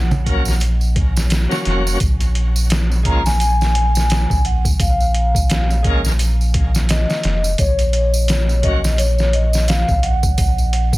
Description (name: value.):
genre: trip hop.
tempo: 86 BPM.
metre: 4/4.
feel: swing 57% on 16ths.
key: Bb minor.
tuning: A4 = 440 Hz.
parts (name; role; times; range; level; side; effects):
vibraphone with soft mallets; melody; 0.0-11.0 s; Db5 to Bb5; -23 LUFS; left 1 dB; dub echo.
soft dub sub bass; bass; 0.0-11.0 s; F1 to Bb1; -17 LUFS; equal; none.
congas and tambourine; percussion; 0.1-11.0 s; none; -27 LUFS; right 3 dB; none.
bright tonewheel organ; accompaniment; 0.2-8.8 s; Gb3 to Bb4; -25 LUFS; equal; overdrive, fast rotary speaker, tremolo, vintage 12-bit sampler grit, tape echo.
trip hop sampler-style drum kit; drums; 0.3-11.0 s; hi-hat, kick drum, snare drum; -19 LUFS; equal; none.
room: digital ambience.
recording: dense, heavily limited modern master.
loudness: -14 LUFS.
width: side -18 dB against mid.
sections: 0.0-11.0 A section.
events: none.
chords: 0.0 Gb/Bb; 2.0 Bbm7; 7.6 Gb/Bb.